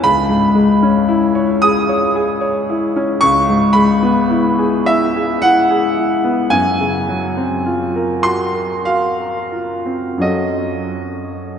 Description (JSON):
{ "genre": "classical, impressionist solo piano", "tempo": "41-57 BPM", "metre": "3/4", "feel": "rubato", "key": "E major", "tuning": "A4 = 440 Hz", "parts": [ { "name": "clear concert grand piano", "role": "solo", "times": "0.0-11.6 s", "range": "C#2 to D#6", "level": "-13 LUFS", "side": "left 1 dB", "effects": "none" } ], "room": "wet cathedral reverb, RT60 4.6 s", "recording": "nothing above 10.8 kHz", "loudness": "-13 LUFS", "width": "side -8 dB against mid", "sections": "0.0-11.6 A section", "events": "none", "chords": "0.0 C#madd9; 3.2 E6/C#; 6.5 Gbmaj7#11; 10.2 Gbm6" }